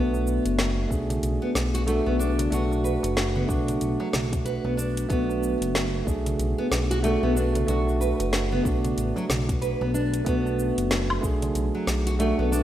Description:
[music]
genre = organic downtempo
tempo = 93 BPM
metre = 4/4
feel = swing 60% on 16ths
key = B dorian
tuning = A4 = 441 Hz
[part]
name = bell-like tine electric piano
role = accompaniment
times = 0.0-12.6 s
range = A3 to G#4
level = -28 LUFS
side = right 3 dB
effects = sidechain pumping, tape echo
[part]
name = nylon-string guitar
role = arpeggios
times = 0.0-12.6 s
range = F#3 to B4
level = -28 LUFS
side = left 1 dB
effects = tape echo
[part]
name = smooth gliding synth bass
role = bass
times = 0.0-12.6 s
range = F#1 to B1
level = -27 LUFS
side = left 1 dB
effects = none
[part]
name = afro-pop drum kit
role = drums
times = 0.1-12.6 s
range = hi-hat, shaker, snare drum, woodblock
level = -30 LUFS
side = left 1 dB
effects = small room reverb
[part]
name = darbuka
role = percussion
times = 0.1-12.5 s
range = none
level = -37 LUFS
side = right 2 dB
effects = none
[part]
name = electronic kick drum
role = drums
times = 0.9-11.4 s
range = none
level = -28 LUFS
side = equal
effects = small room reverb
[sound]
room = moderate lush hall reverb, RT60 2.1 s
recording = rough home demo mix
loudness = -22 LUFS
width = side -12 dB against mid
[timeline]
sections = 0.0-12.6 A section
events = none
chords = 0.0 Bm7

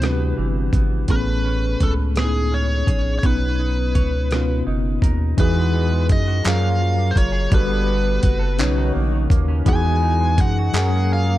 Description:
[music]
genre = slow six-eight R&B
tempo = 56 BPM (dotted quarters)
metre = 6/8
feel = straight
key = E major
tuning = A4 = 444 Hz
[part]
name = biting lead guitar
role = melody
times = 0.0-11.4 s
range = G#4 to G#5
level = -26 LUFS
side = left 1 dB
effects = overdrive, dub echo
[part]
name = semi-hollow electric guitar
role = second line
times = 0.0-11.4 s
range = B2 to C#5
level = -29 LUFS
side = right 3 dB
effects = lush chorus, dub echo
[part]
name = tine electric piano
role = accompaniment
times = 0.0-11.4 s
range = A2 to C#5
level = -25 LUFS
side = left 1 dB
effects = overdrive, fast stereo tremolo
[part]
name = round analog bass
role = bass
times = 0.0-11.4 s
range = F#1 to F#2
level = -20 LUFS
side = equal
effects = none
[part]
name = dusty soul sampler-style drum kit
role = drums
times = 0.0-10.9 s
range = handclaps, hi-hat, kick drum, rim click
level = -19 LUFS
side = equal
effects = overdrive
[part]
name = warm horn section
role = stabs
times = 5.4-11.4 s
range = D3 to G#4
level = -31 LUFS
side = left 3 dB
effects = none
[sound]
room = little or no reverb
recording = echo-heavy mix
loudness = -17 LUFS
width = side -15 dB against mid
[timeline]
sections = 0.0-5.4 A section; 5.4-11.4 B section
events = none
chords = 0.0 Cmaj9; 1.1 Amaj9; 3.2 Bmaj9; 5.4 Emaj9; 6.4 F#maj9; 7.5 Gmaj9; 8.6 Bmaj9; 9.7 Emaj9; 10.7 F#maj9

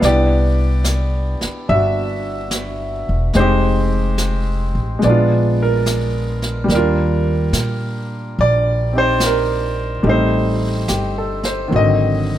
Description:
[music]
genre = jazz ballad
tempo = 72 BPM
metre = 4/4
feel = swing 68% on 8ths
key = unclear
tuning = A4 = 440 Hz
[part]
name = clear baby grand piano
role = accompaniment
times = 0.0-12.4 s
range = D3 to E5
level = -18 LUFS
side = equal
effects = none
[part]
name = upright bass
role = bass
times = 0.0-12.4 s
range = E1 to Bb2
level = -18 LUFS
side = equal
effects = none
[part]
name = jazz brush drum kit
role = drums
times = 0.0-12.4 s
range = brushed snare drum, hi-hat, snare drum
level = -26 LUFS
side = right 1 dB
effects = none
[sound]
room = light reverb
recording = none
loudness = -15 LUFS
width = side -12 dB against mid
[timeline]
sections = 0.0-12.4 A section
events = none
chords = 0.0 Cmaj9; 3.4 Fm7; 5.0 Bb7b9; 6.7 Ebmaj9; 10.1 Am7b5; 11.7 Ab7#11

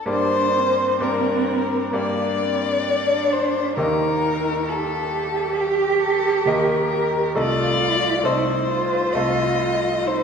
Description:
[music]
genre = classical, slow romantic movement for piano trio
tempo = 66 BPM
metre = 4/4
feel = rubato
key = G minor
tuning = A4 = 441 Hz
[part]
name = warm violin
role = melody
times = 0.0-10.2 s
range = G4 to Eb5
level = -22 LUFS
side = left 3 dB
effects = none
[part]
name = bright grand piano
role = accompaniment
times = 0.0-10.2 s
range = C2 to Eb5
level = -25 LUFS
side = left 1 dB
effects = none
[part]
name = warm cello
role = second line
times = 0.1-10.2 s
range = Bb3 to G4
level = -23 LUFS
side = right 5 dB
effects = none
[sound]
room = wet scoring stage reverb, RT60 2.1 s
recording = heard from further back in the room, lossy compression artefacts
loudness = -18 LUFS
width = side -6 dB against mid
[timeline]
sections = 0.1-10.2 A section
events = none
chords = 0.1 Gm; 3.8 Eb; 7.4 Adim/C

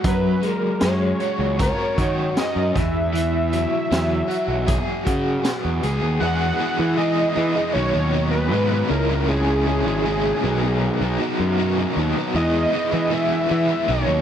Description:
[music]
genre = psychedelic rock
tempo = 78 BPM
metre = 4/4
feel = straight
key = E lydian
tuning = A4 = 441 Hz
[part]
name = overdriven electric guitar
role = riff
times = 0.0-14.2 s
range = B2 to A#4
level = -22 LUFS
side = left 1 dB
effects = tremolo
[part]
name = fuzz picked electric bass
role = bass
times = 0.0-14.2 s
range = G#1 to E3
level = -23 LUFS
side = equal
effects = overdrive
[part]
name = raw garage drum kit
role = drums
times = 0.0-6.0 s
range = hi-hat, kick drum, snare drum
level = -25 LUFS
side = equal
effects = none
[part]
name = fat analog lead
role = melody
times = 0.1-14.2 s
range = G#4 to F#5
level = -24 LUFS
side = equal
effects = slapback echo
[sound]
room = little or no reverb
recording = dry, close 1970s-style studio recording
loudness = -18 LUFS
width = side -9 dB against mid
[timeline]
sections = 0.0-6.2 A section; 6.2-14.2 B section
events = none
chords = 0.0 F#add9; 2.7 Eadd9; 7.8 Badd9; 8.9 C#m; 10.4 B; 12.4 E

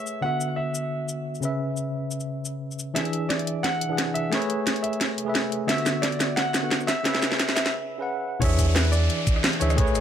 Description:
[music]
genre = liquid drum and bass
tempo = 176 BPM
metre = 4/4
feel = swing 54% on 16ths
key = unclear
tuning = A4 = 436 Hz
[part]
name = warm grand piano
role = melody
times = 0.0-10.0 s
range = B4 to F#5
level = -31 LUFS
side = right 1 dB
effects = tape echo
[part]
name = tine electric piano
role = accompaniment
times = 0.0-10.0 s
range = C#3 to F#5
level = -27 LUFS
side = left 1 dB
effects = auto-pan, low-pass filter, tape echo
[part]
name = drum and bass drum kit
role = drums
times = 0.1-10.0 s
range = hi-hat, rim click, shaker, snare drum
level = -25 LUFS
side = equal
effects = none
[part]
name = electronic kick drum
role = drums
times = 3.0-9.9 s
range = none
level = -25 LUFS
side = equal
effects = high-pass filter on kick, high-pass filter on room
[part]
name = sub bass with octave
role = bass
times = 8.4-10.0 s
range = A1 to E2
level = -22 LUFS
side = equal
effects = none
[part]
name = downlifter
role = sound effects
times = 8.4-10.0 s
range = none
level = -31 LUFS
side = equal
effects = none
[sound]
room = light reverb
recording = high-pass filter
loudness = -22 LUFS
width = side -9 dB against mid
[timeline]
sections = 0.0-3.0 A section; 3.0-8.4 B section; 8.4-10.0 C section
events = build-up 3.0-8.4; drum fill 3.0-7.7; filter sweep on tine electric piano 3.0-8.4; break 7.7-8.4; drop 8.4-10.0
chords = 0.2 D69; 1.4 C#m7; 3.0 E7; 4.3 Amaj9; 5.7 D69; 6.9 C#m7; 8.4 E7

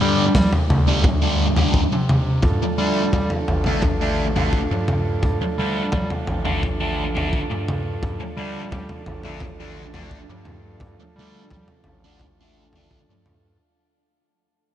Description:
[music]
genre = psychedelic rock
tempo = 86 BPM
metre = 4/4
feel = straight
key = unclear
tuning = A4 = 441 Hz
[part]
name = thick fuzz guitar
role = riff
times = 0.0-13.1 s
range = G2 to D4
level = -24 LUFS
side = equal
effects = distortion, phaser
[part]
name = gritty driven synth bass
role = bass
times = 0.0-13.6 s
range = A1 to G3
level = -24 LUFS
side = equal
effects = none
[part]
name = crunchy breakbeat drum kit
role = drums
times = 0.3-13.4 s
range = kick drum, snare drum, toms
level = -23 LUFS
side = equal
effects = none
[part]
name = overdriven combo organ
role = sustained chords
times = 2.4-13.6 s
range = F3 to A4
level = -29 LUFS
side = right 4 dB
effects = none
[sound]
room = moderate huge ambient reverb, RT60 7.7 s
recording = dreamy mix soaked in reverb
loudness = -18 LUFS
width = side -11 dB against mid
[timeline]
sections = 0.0-13.6 A section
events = fade-out 0.0-13.6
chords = 0.0 G5; 2.4 Dm

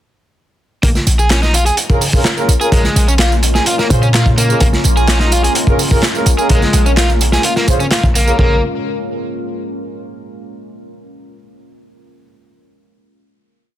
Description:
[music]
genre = breakbeat, breaks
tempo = 127 BPM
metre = 4/4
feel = straight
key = Bb minor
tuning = A4 = 440 Hz
[part]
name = deep dark ambient pad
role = sustained chords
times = 1.6-8.6 s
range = Ab3 to Bb4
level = -23 LUFS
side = left 1 dB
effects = chorus, built-in reverb, vintage 12-bit sampler grit, sidechain pumping
[part]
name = overdriven semi-hollow guitar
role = riff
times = 0.8-8.6 s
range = Ab3 to Ab4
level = -18 LUFS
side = equal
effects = tube saturation, ping-pong delay
[part]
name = warm 808-style bass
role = bass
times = 0.8-8.6 s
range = Bb1 to Bb2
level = -14 LUFS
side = equal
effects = none
[part]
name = crunchy breakbeat drum kit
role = drums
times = 0.8-8.5 s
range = hi-hat, kick drum, snare drum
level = -15 LUFS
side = equal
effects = none
[part]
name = electronic tambourine and handclaps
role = drums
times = 0.8-8.4 s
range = none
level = -21 LUFS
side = right 3 dB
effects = none
[part]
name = mellow brass ensemble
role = stabs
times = 1.9-8.6 s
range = Db4 to C5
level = -20 LUFS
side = right 1 dB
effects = vintage 12-bit sampler grit, ping-pong delay
[sound]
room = little or no reverb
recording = dense, heavily limited modern master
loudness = -11 LUFS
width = side -12 dB against mid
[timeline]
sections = 0.8-8.4 drop; 8.4-10.3 final chord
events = drop 0.8-8.4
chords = 0.8 Bbm7

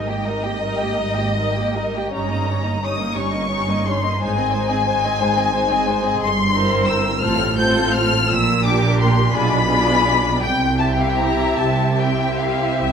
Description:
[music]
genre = classical, slow romantic movement for string orchestra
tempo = 44-61 BPM (dotted quarters)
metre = 6/8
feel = rubato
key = Ab major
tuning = A4 = 440 Hz
[part]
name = rich chamber violin section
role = melody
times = 0.0-12.9 s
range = Eb5 to G6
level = -21 LUFS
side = left 4 dB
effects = none
[part]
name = rich chamber violin section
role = second line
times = 0.0-12.9 s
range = Db4 to G5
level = -24 LUFS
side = left 2 dB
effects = none
[part]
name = warm symphonic viola section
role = accompaniment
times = 0.0-12.9 s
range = G3 to G4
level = -26 LUFS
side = right 1 dB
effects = none
[part]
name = warm chamber cello section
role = bass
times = 0.0-12.9 s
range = G2 to C3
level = -24 LUFS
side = right 3 dB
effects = none
[part]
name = warm studio double bass section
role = bass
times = 0.0-12.9 s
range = G1 to C2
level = -24 LUFS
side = right 3 dB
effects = none
[sound]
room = moderate scoring stage reverb, RT60 1.6 s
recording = none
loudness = -16 LUFS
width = side -7 dB against mid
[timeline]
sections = 0.0-12.9 A section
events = none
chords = 0.0 Eb/Ab; 2.1 Eb7/G; 4.2 Ab; 6.2 C7/G; 7.2 F/A; 8.3 Gm/Bb; 9.3 Bdim7; 10.4 C

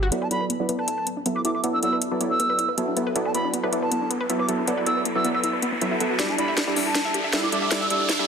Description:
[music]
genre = future bass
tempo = 158 BPM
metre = 4/4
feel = half-time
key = D major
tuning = A4 = 440 Hz
[part]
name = wide unison pluck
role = arpeggios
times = 0.0-8.2 s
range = B3 to E5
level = -30 LUFS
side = left 2 dB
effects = dub echo
[part]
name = saturated sub bass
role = bass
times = 0.0-8.3 s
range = D1 to D2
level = -33 LUFS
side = equal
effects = high-pass filter
[part]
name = supersaw stab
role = riff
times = 0.1-8.3 s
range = F#3 to E5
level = -25 LUFS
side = right 1 dB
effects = low-pass filter
[part]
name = trap drum kit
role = drums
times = 0.1-8.2 s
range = hi-hat, snare drum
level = -26 LUFS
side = left 1 dB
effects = soft clipping on snare, studio reverb
[part]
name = riser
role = sound effects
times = 2.2-8.3 s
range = none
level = -30 LUFS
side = equal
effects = none
[part]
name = bright reedy baroque flute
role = melody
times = 0.2-8.0 s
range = A5 to E6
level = -27 LUFS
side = right 1 dB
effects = vintage 12-bit sampler grit, dub echo
[sound]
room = wet digital room reverb, RT60 1.4 s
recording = dense, heavily limited modern master, high-pass filter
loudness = -21 LUFS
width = side -6 dB against mid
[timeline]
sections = 0.1-8.3 A section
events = build-up 0.1-8.3; filter sweep on supersaw synth 0.1-8.3; filter sweep on synth arpeggio sound 0.1-8.3; filter sweep 0.1-8.3; riser 2.2-8.3; drum fill 6.2-8.3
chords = 0.1 D69; 6.2 A7sus4

